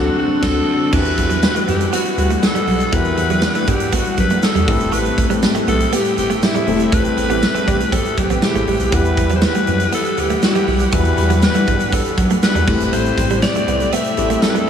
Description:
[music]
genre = 1980s-style pop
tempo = 120 BPM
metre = 4/4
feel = straight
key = E minor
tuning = A4 = 440 Hz
[part]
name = raspy alto saxophone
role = melody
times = 0.0-14.7 s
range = E4 to E5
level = -20 LUFS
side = left 1 dB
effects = tape echo
[part]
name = warm concert grand piano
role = accompaniment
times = 0.0-14.7 s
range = A2 to F#5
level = -21 LUFS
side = left 3 dB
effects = none
[part]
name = string machine, cellos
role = sustained chords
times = 0.0-14.7 s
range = D3 to F#5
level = -24 LUFS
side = equal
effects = ensemble chorus
[part]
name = smooth synth bass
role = bass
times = 0.0-14.7 s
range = E1 to G2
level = -21 LUFS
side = right 1 dB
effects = none
[part]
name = big rock drum kit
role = drums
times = 0.4-14.7 s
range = crash cymbal, hi-hat, kick drum, snare drum, tambourine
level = -20 LUFS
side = right 1 dB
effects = none
[part]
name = direct-recorded clean electric guitar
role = riff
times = 0.9-14.7 s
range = E3 to D4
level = -25 LUFS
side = right 6 dB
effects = none
[part]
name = egg shaker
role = percussion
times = 0.9-14.7 s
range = none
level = -38 LUFS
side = right 7 dB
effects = none
[part]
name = funky polysynth comp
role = stabs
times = 7.3-8.7 s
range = E3 to G4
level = -28 LUFS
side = right 3 dB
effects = none
[sound]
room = moderate huge ambient reverb, RT60 7.9 s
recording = dreamy mix soaked in reverb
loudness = -14 LUFS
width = side -8 dB against mid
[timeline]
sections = 0.9-14.7 A section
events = band accent 0.0-0.9, 6.9-8.9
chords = 0.0 D7; 0.9 Emadd9; 4.7 Am7; 8.9 Emadd9; 12.7 Am7

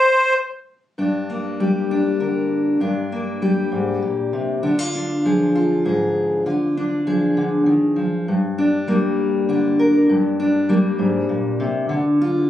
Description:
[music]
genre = folk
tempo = 66 BPM (dotted quarters)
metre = 6/8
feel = straight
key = unclear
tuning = A4 = 440 Hz
[part]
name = fingerpicked steel-string acoustic guitar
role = accompaniment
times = 1.0-12.5 s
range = G2 to Bb4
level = -17 LUFS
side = left 1 dB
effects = none
[sound]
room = light reverb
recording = recorded on a phone in the room, studio reverb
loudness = -17 LUFS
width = side -12 dB against mid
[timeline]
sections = 1.0-8.3 A section; 8.3-12.5 B section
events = build-up 8.3-12.5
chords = 0.0 N.C.; 1.0 Gm; 4.6 Ddim; 8.3 Gm; 11.9 Dm

